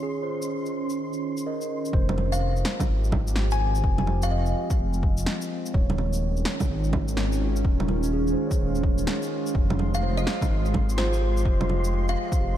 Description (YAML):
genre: future garage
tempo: 126 BPM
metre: 4/4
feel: swing 63% on 16ths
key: F minor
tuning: A4 = 440 Hz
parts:
  - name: mellow tine electric piano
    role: accompaniment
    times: 0.0-12.6 s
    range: F4 to Eb5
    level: -35 LUFS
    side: right 3 dB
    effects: sidechain pumping, diffuse ambient delay
  - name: warbly tape-like pad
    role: sustained chords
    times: 0.0-12.6 s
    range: Eb3 to Eb5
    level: -30 LUFS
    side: right 1 dB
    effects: chorus, built-in reverb, sidechain pumping
  - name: flickering grainy texture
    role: texture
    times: 0.0-2.0, 9.8-12.6 s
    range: C6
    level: -41 LUFS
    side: equal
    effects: built-in reverb
  - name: electronic shaker, bongos and snare drum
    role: drums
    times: 0.4-12.4 s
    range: none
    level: -30 LUFS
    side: right 2 dB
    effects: none
  - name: dark detuned saw bass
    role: bass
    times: 1.9-12.6 s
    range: Eb1 to Ab1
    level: -25 LUFS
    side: equal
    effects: sidechain pumping
  - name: electronic kick drum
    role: drums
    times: 1.9-12.4 s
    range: none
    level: -24 LUFS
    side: equal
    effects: none
  - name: kalimba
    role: melody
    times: 2.3-4.9, 9.9-12.4 s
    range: C5 to Ab5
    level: -32 LUFS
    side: left 2 dB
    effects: analog delay
room: light reverb, digital ambience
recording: none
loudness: -22 LUFS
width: side -11 dB against mid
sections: 0.0-1.9 A section; 1.9-12.6 B section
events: filter sweep on ambient pad 0.0-1.9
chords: 0.0 Eb7sus4; 1.9 Fm9; 5.7 Eb7sus4; 9.6 Fm9